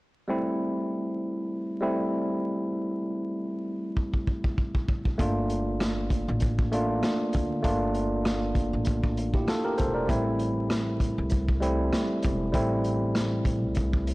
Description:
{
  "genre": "hip hop, boom-bap hip-hop",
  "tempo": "98 BPM",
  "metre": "4/4",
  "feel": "swing 55% on 16ths",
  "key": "A phrygian",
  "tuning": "A4 = 441 Hz",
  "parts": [
    { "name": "mellow tine electric piano", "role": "accompaniment", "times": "0.3-14.1 s", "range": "G3 to D5", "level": "-28 LUFS", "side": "equal", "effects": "high-pass filter, low-pass filter" },
    { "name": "crunchy breakbeat drum kit", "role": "drums", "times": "4.0-14.1 s", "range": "hi-hat, kick drum, rim click, snare drum", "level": "-28 LUFS", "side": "equal", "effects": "none" },
    { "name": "upright bass", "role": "bass", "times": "5.2-14.1 s", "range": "E1 to D2", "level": "-30 LUFS", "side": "equal", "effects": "transformer saturation" }
  ],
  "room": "light reverb, small room ambience",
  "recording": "blown-out, overdriven recording, vinyl crackle, overdrive, lossy compression artefacts",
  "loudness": "-25 LUFS",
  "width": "side -21 dB against mid",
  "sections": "0.3-10.1 A section; 10.1-14.1 B section",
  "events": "drum fill 4.0-5.2",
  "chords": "0.3 Am7; 5.2 Gm7; 10.1 Am7"
}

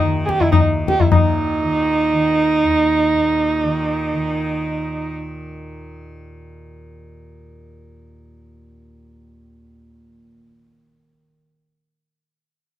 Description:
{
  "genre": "indian classical, Hindustani",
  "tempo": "128 BPM",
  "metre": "7/4",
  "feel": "straight",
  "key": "unclear",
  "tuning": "A4 = 438 Hz",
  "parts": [
    { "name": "warm sarangi", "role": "melody", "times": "0.0-5.1 s", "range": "Eb4 to Ab4", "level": "-18 LUFS", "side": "right 2 dB", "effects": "none" },
    { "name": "tanpura", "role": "drone", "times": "0.0-11.3 s", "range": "Eb2 to Eb3", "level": "-27 LUFS", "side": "right 1 dB", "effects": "none" },
    { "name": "tabla", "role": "percussion", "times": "0.3-1.3 s", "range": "none", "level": "-16 LUFS", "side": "left 4 dB", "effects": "none" }
  ],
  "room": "moderate booth ambience, RT60 0.2 s",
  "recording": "none",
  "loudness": "-15 LUFS",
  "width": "side -12 dB against mid",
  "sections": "0.0-1.1 A section; 1.1-4.4 B section",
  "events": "speeding up 0.0-4.4",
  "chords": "none"
}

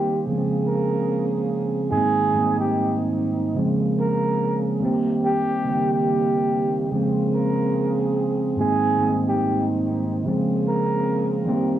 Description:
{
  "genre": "hip hop",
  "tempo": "72 BPM",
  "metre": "4/4",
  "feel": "swing 63% on 16ths",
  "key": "Bb dorian",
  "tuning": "A4 = 441 Hz",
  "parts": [
    { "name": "breathy flugelhorn", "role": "melody", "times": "0.0-11.3 s", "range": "G4 to Bb4", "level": "-25 LUFS", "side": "right 1 dB", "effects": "low-pass filter, cassette tape, analog delay" },
    { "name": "mellow tine electric piano", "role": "accompaniment", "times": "0.0-11.8 s", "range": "Ab2 to C4", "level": "-22 LUFS", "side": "equal", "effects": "medium stereo tremolo, cassette tape, low-pass filter" },
    { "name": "mellow French horn section", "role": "sustained chords", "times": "0.0-11.8 s", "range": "Db3 to Ab4", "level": "-26 LUFS", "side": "right 3 dB", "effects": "low-pass filter, cassette tape" }
  ],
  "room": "moderate spring reverb, RT60 1.2 s",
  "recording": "home recording on cassette, small room ambience",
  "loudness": "-20 LUFS",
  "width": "side -11 dB against mid",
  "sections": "0.0-11.8 A section",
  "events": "none",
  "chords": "0.2 Bbm9; 1.9 Abmaj7; 3.6 Bbm9; 4.8 Cm7; 6.9 Bbm9; 8.6 Abmaj7; 10.2 Bbm9"
}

